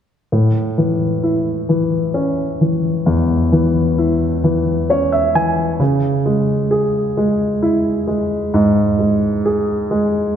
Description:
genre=pop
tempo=44 BPM (dotted quarters)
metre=6/8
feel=straight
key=unclear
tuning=A4 = 440 Hz
part: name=warm grand piano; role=accompaniment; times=0.3-10.4 s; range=E2 to G#5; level=-14 LUFS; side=equal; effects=none
room=wet concert hall reverb, RT60 1.7 s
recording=none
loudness=-14 LUFS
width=side -9 dB against mid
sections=0.3-10.4 A section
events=grand piano fill 4.4-5.8, 9.9-10.4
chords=0.3 A; 5.8 C#m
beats=| 0.32 1.69 | 3.06 4.43 | 5.80 7.17 | 8.54 9.90

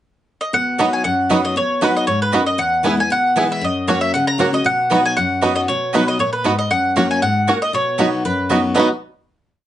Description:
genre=bluegrass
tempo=233 BPM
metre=4/4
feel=swing 53% on 8ths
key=B major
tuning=A4 = 440 Hz
part: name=mandolin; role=melody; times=0.4-8.9 s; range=B4 to A#5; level=-18 LUFS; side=equal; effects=none
part: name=picked steel-string acoustic guitar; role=accompaniment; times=0.5-8.9 s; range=E2 to F#4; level=-20 LUFS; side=left 2 dB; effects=none
part: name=bluegrass banjo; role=arpeggios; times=0.8-8.9 s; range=B3 to G#4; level=-19 LUFS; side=right 2 dB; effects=none
part: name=mandolin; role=stabs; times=0.8-8.9 s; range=A#3 to B5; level=-21 LUFS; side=right 4 dB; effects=none
room=wet studio ambience, RT60 0.5 s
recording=nothing above 10.8 kHz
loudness=-15 LUFS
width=side -12 dB against mid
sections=0.0-0.5 pickup bar; 0.5-8.8 A section; 8.8-9.7 final chord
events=none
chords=0.0 N.C.; 0.5 B; 2.6 E; 3.6 F#; 4.7 B; 6.7 F#; 7.7 B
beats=0.01 0.27 | 0.52 0.78 1.04 1.30 | 1.56 1.81 2.07 2.33 | 2.59 2.85 3.10 3.36 | 3.62 3.88 4.14 4.39 | 4.65 4.91 5.17 5.42 | 5.68 5.94 6.19 6.45 | 6.71 6.96 7.22 7.47 | 7.73 7.98 8.24 8.49 | 8.75

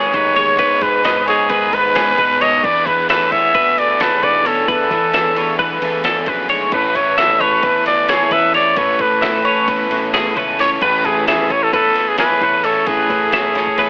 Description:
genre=math rock and midwest emo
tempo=264 BPM (eighths)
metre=9/8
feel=straight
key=unclear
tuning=A4 = 442 Hz
part: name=growling trumpet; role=melody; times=0.0-13.9 s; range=G#4 to E5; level=-15 LUFS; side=equal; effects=none
part: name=twelve-string electric guitar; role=accompaniment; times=0.0-13.9 s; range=E2 to F#4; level=-24 LUFS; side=right 1 dB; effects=none
part: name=twelve-string electric guitar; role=arpeggios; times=0.0-13.9 s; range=G#4 to E5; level=-18 LUFS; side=left 1 dB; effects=none
part: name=biting overdriven guitar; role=riff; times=0.0-13.9 s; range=A2 to A4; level=-24 LUFS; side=equal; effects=none
part: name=growling fingered electric bass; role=bass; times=0.1-13.9 s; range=A1 to E3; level=-27 LUFS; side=equal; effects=overdrive
part: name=trip hop sampler-style drum kit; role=drums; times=0.1-13.9 s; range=crash cymbal, kick drum, ride cymbal, snare drum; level=-24 LUFS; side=equal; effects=none
room=light reverb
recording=telephone sound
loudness=-12 LUFS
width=side -28 dB against mid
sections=0.0-13.9 A section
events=drum fill 13.6-13.9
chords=0.0 G#m7; 2.6 E7sus4; 6.7 Amaj9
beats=0.14 0.37 | 0.59 0.82 1.05 1.27 1.50 1.73 1.96 2.18 2.41 | 2.64 2.87 3.09 3.32 3.55 3.78 4.00 4.23 4.46 | 4.68 4.91 5.14 5.37 5.59 5.82 6.05 6.28 6.50 | 6.73 6.96 7.18 7.41 7.64 7.87 8.09 8.32 8.55 | 8.78 9.00 9.23 9.46 9.69 9.91 10.14 10.37 10.60 | 10.82 11.05 11.28 11.51 11.73 11.96 12.19 12.41 12.64 | 12.87 13.10 13.33 13.55 13.78

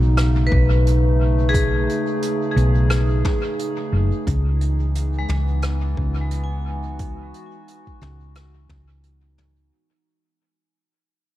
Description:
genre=ambient dub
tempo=88 BPM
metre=4/4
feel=swing 58% on 16ths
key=C# minor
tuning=A4 = 440 Hz
part: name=warbly tape-like pad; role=sustained chords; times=0.0-9.7 s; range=C#3 to G#4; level=-27 LUFS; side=right 3 dB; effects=chorus, built-in reverb
part: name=vibraphone with hard mallets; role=arpeggios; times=0.0-9.7 s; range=G#3 to G#5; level=-27 LUFS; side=left 3 dB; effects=tape echo
part: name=hollow-body short-scale fingered electric bass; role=bass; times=0.0-9.7 s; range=F#1 to C#2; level=-18 LUFS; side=equal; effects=none
part: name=vintage brush drum kit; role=drums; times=0.2-9.5 s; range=hi-hat, rim click, toms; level=-31 LUFS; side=equal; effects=dub echo
part: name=electronic kick drum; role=drums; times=0.5-8.9 s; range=none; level=-22 LUFS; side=equal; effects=none
room=light reverb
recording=echo-heavy mix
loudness=-18 LUFS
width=side -14 dB against mid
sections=0.0-9.7 A section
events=fade-out 2.5-9.7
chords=0.0 B13; 4.3 C#m11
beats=0.18 0.86 | 1.54 2.22 2.90 3.59 | 4.27 4.95 5.63 6.31 | 7.00 7.68 8.36 9.04

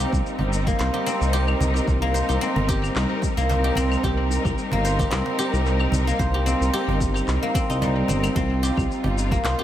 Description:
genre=organic downtempo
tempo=111 BPM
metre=4/4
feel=swing 54% on 16ths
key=C minor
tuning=A4 = 440 Hz
part: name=clear symphonic string section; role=sustained chords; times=0.0-9.6 s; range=G3 to Bb4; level=-27 LUFS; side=left 1 dB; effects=sidechain pumping
part: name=guzheng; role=arpeggios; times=0.0-9.6 s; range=G3 to C5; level=-25 LUFS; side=left 1 dB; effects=tape echo
part: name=smooth gliding synth bass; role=bass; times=0.0-9.5 s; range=G1 to C2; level=-23 LUFS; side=equal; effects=none
part: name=electronic kick drum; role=drums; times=0.1-9.4 s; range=none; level=-25 LUFS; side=equal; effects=small room ambience
part: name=electronic shaker, handclaps and claves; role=drums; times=0.1-9.6 s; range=none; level=-33 LUFS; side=left 2 dB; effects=small room ambience, tape echo
part: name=cajon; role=percussion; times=0.4-9.6 s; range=none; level=-32 LUFS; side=right 2 dB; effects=none
room=moderate plate reverb, RT60 1.9 s, studio ambience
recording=echo-heavy mix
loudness=-20 LUFS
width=side -11 dB against mid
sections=0.0-9.6 A section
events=none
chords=0.0 Cm7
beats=0.25 0.79 1.33 | 1.87 2.41 2.96 3.50 | 4.04 4.58 5.12 5.66 | 6.20 6.74 7.28 7.82 | 8.36 8.90 9.44

